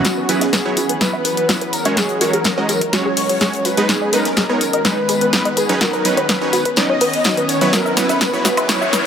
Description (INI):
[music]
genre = progressive house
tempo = 125 BPM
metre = 4/4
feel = straight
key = unclear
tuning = A4 = 440 Hz
[part]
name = shimmering ambient pad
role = sustained chords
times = 0.0-9.1 s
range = D#3 to E4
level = -23 LUFS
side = right 1 dB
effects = chorus, built-in reverb, sidechain pumping
[part]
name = supersaw stab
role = stabs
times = 0.0-8.8 s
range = E3 to D#5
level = -22 LUFS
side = right 2 dB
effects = sidechain pumping, tape echo
[part]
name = fat analog bass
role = bass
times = 0.0-9.1 s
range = F#1 to E2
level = -36 LUFS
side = left 1 dB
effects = none
[part]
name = deep reggae drum kit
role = drums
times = 0.0-9.1 s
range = hi-hat, snare drum, tambourine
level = -29 LUFS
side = left 3 dB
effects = high-pass filter on hats, high-pass filter on snare, high-pass filter on perc, high-pass filter on room
[part]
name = wide unison lead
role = melody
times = 0.1-9.1 s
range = F#4 to D#5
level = -21 LUFS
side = equal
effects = analog chorus, sidechain pumping, tape echo
[part]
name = wide unison pluck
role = arpeggios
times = 0.1-9.0 s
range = F#4 to E5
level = -23 LUFS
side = left 1 dB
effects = sidechain pumping, tape echo
[part]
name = deep house drum kit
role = drums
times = 0.1-9.0 s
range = cabasa, hi-hat, snare drum, woodblock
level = -19 LUFS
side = left 1 dB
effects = low-pass filter on perc, low-pass filter on snare, low-pass filter on hats, low-pass filter on room
[part]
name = electronic kick drum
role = drums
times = 0.1-8.8 s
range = none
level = -28 LUFS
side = equal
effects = none
[part]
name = riser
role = sound effects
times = 8.1-9.1 s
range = none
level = -25 LUFS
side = left 1 dB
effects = none
[sound]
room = light reverb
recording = high-pass filter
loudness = -14 LUFS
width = side -8 dB against mid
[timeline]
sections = 0.1-9.1 A section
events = build-up 0.1-9.1; drum fill 0.1-9.1; filter sweep on synth pluck 0.1-9.1; riser 8.1-9.1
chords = 0.1 Esus2; 2.0 G#m; 5.8 Badd9; 7.7 Esus2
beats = | 0.05 0.53 1.01 1.49 | 1.97 2.45 2.93 3.41 | 3.89 4.37 4.85 5.33 | 5.81 6.29 6.77 7.25 | 7.73 8.21 8.69